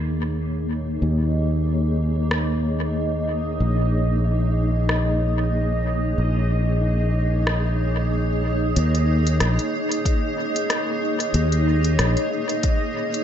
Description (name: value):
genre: ambient dub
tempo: 93 BPM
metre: 4/4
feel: swing 56% on 16ths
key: unclear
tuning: A4 = 439 Hz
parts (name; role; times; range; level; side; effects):
- granular cloud pad; sustained chords; 0.0-13.2 s; Bb3 to Db5; -26 LUFS; left 1 dB; built-in reverb
- fingered electric bass; bass; 0.0-12.2 s; Bb1 to Eb2; -21 LUFS; equal; tube saturation
- bubbling stepped-filter texture; texture; 1.1-13.2 s; Eb5; -30 LUFS; right 2 dB; chorus, built-in reverb
- organic electronic drum kit; drums; 2.3-13.2 s; hi-hat, rim click; -28 LUFS; left 1 dB; dub echo
- electronic kick drum; drums; 10.1-12.8 s; none; -21 LUFS; equal; none
room: light reverb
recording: nothing above 7.7 kHz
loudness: -19 LUFS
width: side -9 dB against mid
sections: 0.0-8.8 A section; 8.8-13.2 B section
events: filter sweep on ambient pad 0.0-8.8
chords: 0.0 Eb5; 3.6 Bbm7